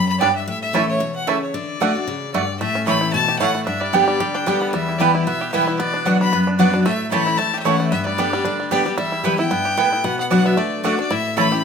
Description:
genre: bluegrass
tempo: 226 BPM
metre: 4/4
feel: swing 55% on 8ths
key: unclear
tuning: A4 = 440 Hz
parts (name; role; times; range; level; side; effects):
- bright fiddle; melody; 0.0-11.6 s; C#5 to B5; -23 LUFS; left 4 dB; none
- picked steel-string acoustic guitar; accompaniment; 0.0-11.6 s; E2 to G4; -21 LUFS; left 3 dB; none
- bluegrass banjo; melody; 0.2-11.6 s; G3 to G4; -25 LUFS; right 4 dB; none
- mandolin; stabs; 0.2-11.5 s; A3 to A5; -22 LUFS; right 8 dB; none
room: wet studio reverb, RT60 1.0 s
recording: none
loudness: -17 LUFS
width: side -6 dB against mid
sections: 0.0-2.6 A section; 2.6-11.1 B section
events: none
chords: 0.5 A; 1.5 D; 2.6 A; 3.7 G; 4.7 Em; 5.8 Bm; 6.9 A; 7.9 G; 9.0 Em; 10.0 Bm; 10.6 D; 11.1 A

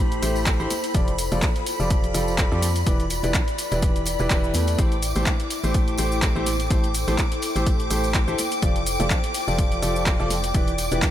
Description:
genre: piano house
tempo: 125 BPM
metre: 4/4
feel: swing 55% on 16ths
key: A minor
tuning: A4 = 437 Hz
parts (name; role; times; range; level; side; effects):
- string machine, violins; sustained chords; 0.0-11.1 s; B5 to D6; -32 LUFS; equal; ensemble chorus, sidechain pumping
- clear grand piano; riff; 0.0-11.1 s; E3 to D5; -27 LUFS; equal; sidechain pumping, dub echo
- organ-like FM bass; bass; 0.0-11.0 s; E1 to F2; -26 LUFS; equal; sidechain pumping
- ethereal airy pad; texture; 0.0-11.1 s; E4 to G5; -30 LUFS; left 2 dB; ensemble chorus, built-in reverb, sidechain pumping
- punchy analog drum machine; drums; 0.1-11.1 s; handclaps, hi-hat, shaker; -29 LUFS; equal; none
- tambourine and congas; percussion; 0.2-11.1 s; none; -35 LUFS; right 3 dB; none
- electronic kick drum; drums; 0.5-11.1 s; none; -22 LUFS; equal; none
room: light reverb, digital ambience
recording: none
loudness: -20 LUFS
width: side -11 dB against mid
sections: 0.0-11.1 A section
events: none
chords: 0.0 Am7; 0.7 F69; 2.9 Em7; 4.8 Am7; 8.4 F69; 10.5 Em7

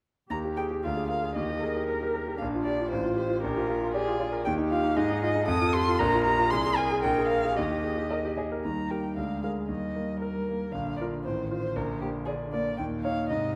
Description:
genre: quick classical-period movement for piano trio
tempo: 116 BPM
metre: 2/4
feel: rubato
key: Eb major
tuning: A4 = 440 Hz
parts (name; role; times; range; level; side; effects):
- muted violin; melody; 0.3-13.5 s; G4 to Eb6; -33 LUFS; equal; none
- muted cello; second line; 0.3-13.6 s; Bb2 to Bb4; -35 LUFS; equal; none
- clear concert grand piano; accompaniment; 0.3-13.6 s; A1 to Eb5; -32 LUFS; equal; none
room: moderate scoring stage reverb, RT60 1.6 s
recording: none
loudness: -28 LUFS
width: mono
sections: 0.3-8.6 A section; 8.6-13.6 A section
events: none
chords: 0.3 Eb; 0.8 Bb7/D; 1.4 Eb; 2.4 Bb; 2.9 F/A; 3.4 Bb; 4.4 Eb; 5.0 Ab5; 5.5 F7; 6.0 Bb5; 6.5 Ab/C; 7.0 Bb5; 7.6 Eb; 9.2 Bb7/D; 9.7 Eb; 10.7 Bb; 11.2 F7/A; 11.8 Bb; 12.8 Eb7(no3)

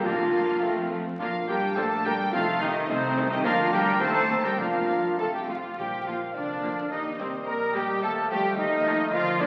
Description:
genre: quick classical-period movement for symphony orchestra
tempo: 107 BPM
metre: 2/4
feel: rubato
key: Bb major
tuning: A4 = 440 Hz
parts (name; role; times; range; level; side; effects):
- mellow clarinet; second line; 0.0-9.5 s; C4 to D5; -39 LUFS; equal; none
- silver concert flute; second line; 0.0-9.5 s; Eb4 to Bb5; -34 LUFS; equal; none
- warm cor anglais; second line; 0.0-9.5 s; C4 to F5; -36 LUFS; equal; none
- warm studio violin section; second line; 0.0-9.5 s; A3 to Bb5; -39 LUFS; equal; none
- clear studio viola section; accompaniment; 0.0-9.5 s; C3 to Bb3; -40 LUFS; equal; none
- mellow bassoon; accompaniment; 0.0-9.5 s; F3 to C4; -37 LUFS; equal; none
- dark French horn section; sustained chords; 0.0-9.5 s; C3 to A4; -34 LUFS; equal; none
- rich studio cello section; bass; 0.0-9.5 s; C3 to Bb4; -34 LUFS; equal; none
- rich studio violin section; melody; 0.1-9.5 s; C5 to Bb5; -36 LUFS; equal; none
- rich studio double bass section; bass; 0.1-9.5 s; F1 to F2; -42 LUFS; equal; none
- timpani; percussion; 0.1-0.6, 4.6-6.6 s; F2 to Bb2; -46 LUFS; equal; none
- warm trumpet; stabs; 5.2-9.5 s; C4 to Bb4; -34 LUFS; equal; none
room: wet scoring stage reverb, RT60 2.0 s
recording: very old 78 rpm record, vinyl crackle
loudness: -26 LUFS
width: mono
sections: 0.0-5.8 A section; 5.8-9.5 B section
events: none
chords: 0.1 Bb/F; 0.6 F; 1.2 Bb; 2.3 Adim/C; 3.4 Bb/D; 4.0 Cm/Eb; 4.6 Bb/F; 5.2 F; 5.8 Bb; 6.9 Eb; 8.0 F7/Eb

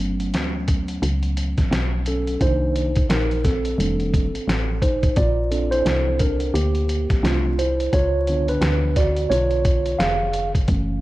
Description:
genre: hip hop, jazz-hop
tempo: 87 BPM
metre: 4/4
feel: swing 60% on 16ths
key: unclear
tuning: A4 = 440 Hz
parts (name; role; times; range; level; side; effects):
- mellow tine electric piano; accompaniment; 0.0-11.0 s; D3 to E#5; -23 LUFS; right 1 dB; medium stereo tremolo
- woody FM bass; bass; 0.0-11.0 s; F1 to D2; -23 LUFS; equal; none
- lo-fi sampler-style drum kit; drums; 0.2-10.9 s; hi-hat, kick drum, snare drum; -23 LUFS; equal; none
room: digital ambience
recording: vinyl crackle, lossy compression artefacts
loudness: -18 LUFS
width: side -17 dB against mid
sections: 0.0-11.0 A section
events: tine electric piano solo 0.0-11.0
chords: 0.0 Gmaj9#11; 2.4 Cm7; 3.8 F13; 5.2 Bbmaj7; 7.9 C#7b9

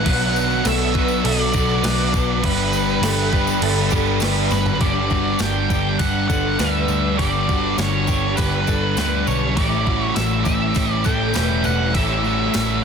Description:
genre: rock, shoegaze and dream pop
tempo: 101 BPM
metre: 4/4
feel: straight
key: unclear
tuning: A4 = 440 Hz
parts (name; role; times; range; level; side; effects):
- octave-fuzz lead guitar; melody; 0.0-12.8 s; B4 to G5; -24 LUFS; equal; distortion, digital delay
- electric guitar through a small old amp; arpeggios; 0.0-12.8 s; F#4 to B4; -28 LUFS; equal; ensemble chorus, digital delay
- biting overdriven guitar; riff; 0.0-12.8 s; G2 to G4; -24 LUFS; right 13 dB; reverse reverb
- crunchy overdriven guitar; riff; 0.0-12.8 s; G2 to B3; -27 LUFS; equal; none
- thick fuzz guitar; riff; 0.0-12.8 s; G2 to B3; -25 LUFS; left 13 dB; distortion, lush chorus
- vintage muted picked electric bass; bass; 0.0-12.8 s; E1 to D2; -24 LUFS; equal; none
- crisp 8-bit digital drum machine; drums; 0.1-12.7 s; crash cymbal, hi-hat, kick drum, snare drum, toms; -24 LUFS; equal; none
- tambourine; percussion; 0.1-12.7 s; none; -36 LUFS; left 13 dB; none
room: digital ambience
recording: dense, heavily limited modern master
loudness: -17 LUFS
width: side -6 dB against mid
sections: 0.0-4.8 A section; 4.8-12.8 B section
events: drum fill 4.5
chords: 0.1 Bm7; 2.4 G; 9.6 A7(no3)

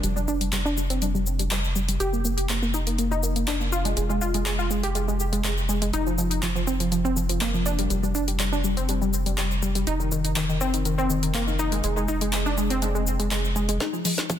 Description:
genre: progressive house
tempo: 122 BPM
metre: 4/4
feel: straight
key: F dorian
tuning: A4 = 440 Hz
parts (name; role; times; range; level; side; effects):
- analog pluck; arpeggios; 0.0-14.4 s; Eb3 to G4; -26 LUFS; left 1 dB; chorus, cassette tape, sidechain pumping, digital delay
- round analog bass; bass; 0.0-13.8 s; F1; -27 LUFS; equal; sidechain pumping
- deep house drum kit; drums; 0.0-14.4 s; handclaps, hi-hat, shaker, snare drum; -30 LUFS; left 1 dB; sidechain pumping on hats, sidechain pumping on perc
- electronic kick drum; drums; 13.8-14.4 s; none; -31 LUFS; equal; high-pass filter on kick
room: light reverb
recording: dense, heavily limited modern master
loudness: -22 LUFS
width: side -10 dB against mid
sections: 0.0-13.8 A section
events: filter sweep on synth pluck 0.0-13.8; drum fill 13.8-14.4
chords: 0.0 Fsus2; 2.0 Fsus4; 4.0 Fm; 5.9 Fsus2; 9.9 Fm7; 13.8 N.C.

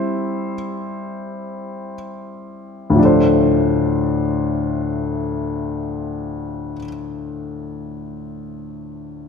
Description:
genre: pop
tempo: free time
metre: none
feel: none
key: D minor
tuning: A4 = 443 Hz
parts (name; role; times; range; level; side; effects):
- warm upright piano; accompaniment; 0.0-9.3 s; D2 to C5; -19 LUFS; left 2 dB; none
room: wet concert hall reverb, RT60 1.8 s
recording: none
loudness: -18 LUFS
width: side -6 dB against mid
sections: 0.0-3.0 A section; 3.0-7.0 B section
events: slowing down 0.0-3.0; upright piano solo 0.0-3.0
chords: 0.0 C/G; 3.0 Dm7

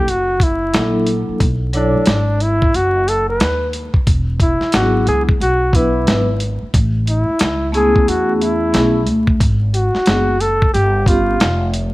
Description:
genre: hip hop, jazz-hop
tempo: 90 BPM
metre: 4/4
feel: swing 62% on 16ths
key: unclear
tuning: A4 = 440 Hz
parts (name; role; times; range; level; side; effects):
- breathy flugelhorn; melody; 0.0-11.7 s; D4 to B4; -18 LUFS; equal; none
- upright bass; bass; 0.0-11.9 s; E1 to E2; -19 LUFS; equal; none
- dusty soul sampler-style drum kit; drums; 0.1-11.9 s; hi-hat, kick drum, snare drum; -16 LUFS; equal; none
- vibraphone with soft mallets; accompaniment; 0.7-11.3 s; F#3 to C#5; -19 LUFS; equal; none
room: little or no reverb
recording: vinyl crackle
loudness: -13 LUFS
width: side -19 dB against mid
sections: 0.0-11.9 A section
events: none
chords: 0.1 F#7alt; 1.4 Bm11; 4.1 E7; 6.7 Amaj9; 9.4 G#m7b5; 10.7 G7#11

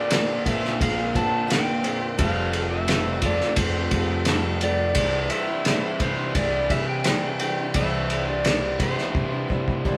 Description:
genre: folk rock and heartland rock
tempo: 86 BPM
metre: 4/4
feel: straight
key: C mixolydian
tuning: A4 = 440 Hz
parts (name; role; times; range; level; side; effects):
- pedal steel guitar; melody; 0.0-10.0 s; C5 to A5; -30 LUFS; equal; none
- picked steel-string acoustic guitar; accompaniment; 0.0-10.0 s; Bb2 to C5; -32 LUFS; equal; none
- crunchy overdriven guitar; riff; 0.0-10.0 s; F2 to F4; -32 LUFS; equal; none
- cloth-damped thuddy drum kit; drums; 0.1-10.0 s; kick drum, ride cymbal, snare drum; -27 LUFS; equal; none
- fingered electric bass; bass; 0.5-10.0 s; F1 to C3; -32 LUFS; equal; none
room: moderate studio reverb, RT60 0.6 s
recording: band playing live in one room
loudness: -23 LUFS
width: mono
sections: 0.0-10.0 A section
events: drum fill 9.2-10.0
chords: 0.0 Bbadd9; 2.2 Fadd9; 5.0 Cadd9

